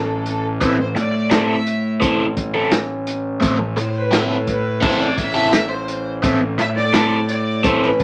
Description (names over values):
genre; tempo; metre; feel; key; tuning
psychedelic rock; 85 BPM; 4/4; straight; A minor; A4 = 440 Hz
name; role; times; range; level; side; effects
rich chamber string section; sustained chords; 0.0-8.0 s; A4 to E5; -25 LUFS; equal; none
fuzz picked electric bass; bass; 0.0-8.0 s; A1 to A2; -24 LUFS; equal; overdrive
vintage drum kit; drums; 0.3-8.0 s; crash cymbal, hi-hat, kick drum, snare drum; -24 LUFS; equal; none
overdriven electric guitar; riff; 0.6-7.9 s; A3 to A4; -21 LUFS; equal; phaser
room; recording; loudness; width
wet small room reverb, RT60 0.5 s; none; -19 LUFS; mono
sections
0.0-8.0 A section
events
string section solo 0.0-8.0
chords
0.0 Am